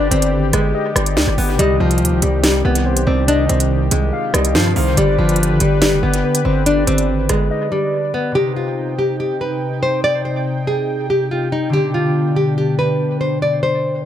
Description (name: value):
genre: hip hop, drill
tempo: 142 BPM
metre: 4/4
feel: half-time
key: C harmonic minor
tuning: A4 = 442 Hz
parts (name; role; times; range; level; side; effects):
- nylon-string guitar; melody; 0.0-14.0 s; Eb3 to D5; -19 LUFS; equal; dub echo
- soft octave-layered synth lead; second line; 0.0-8.3 s; B4 to F5; -25 LUFS; left 4 dB; chorus, dub echo
- concert harp; accompaniment; 0.0-14.1 s; C3 to F5; -23 LUFS; left 1 dB; dub echo
- warm analog pad; sustained chords; 0.0-14.1 s; B2 to G5; -24 LUFS; equal; chorus
- distorted 808-style bass; bass; 0.0-7.5 s; F1 to G2; -18 LUFS; right 1 dB; distortion
- drill drum kit; drums; 0.1-7.4 s; hi-hat, rim click, snare drum; -20 LUFS; right 1 dB; dub echo
room: digital ambience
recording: echo-heavy mix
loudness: -14 LUFS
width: side -10 dB against mid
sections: 0.0-8.4 A section; 8.4-14.1 B section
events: break 7.5-8.4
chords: 0.0 G; 1.6 Cm; 5.0 G; 8.4 Cm; 11.7 G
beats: 0.32 0.75 1.17 | 1.59 2.01 2.44 2.86 | 3.28 3.70 4.13 4.55 | 4.97 5.39 5.82 6.24 | 6.66 7.08 7.51 7.93 | 8.35 8.77 9.20 9.62 | 10.04 10.46 10.89 11.31 | 11.73 12.15 12.58 13.00 | 13.42 13.85